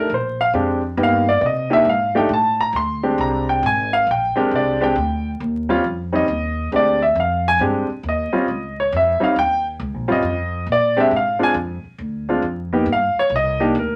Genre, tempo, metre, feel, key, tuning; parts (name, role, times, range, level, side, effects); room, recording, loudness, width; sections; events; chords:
jazz piano trio; 136 BPM; 3/4; swing 66% on 8ths; Bb mixolydian; A4 = 440 Hz
dark grand piano; melody; 0.0-14.0 s; G3 to C6; -19 LUFS; equal
upright bass; bass; 0.1-14.0 s; G1 to C3; -28 LUFS; equal
moderate studio ambience, RT60 0.5 s; vinyl crackle; -19 LUFS; mono
0.0-2.7 A section; 2.7-14.0 A section
grand piano solo 0.0-14.0
0.1 Bb13; 1.0 G7alt; 1.4 Cm; 2.3 N.C.; 2.7 Bb13; 5.4 Ebsus2; 6.7 Dm11; 8.0 Eb9; 10.7 Bb9; 12.0 Dm; 12.9 Fsus2/G; 13.3 Cm7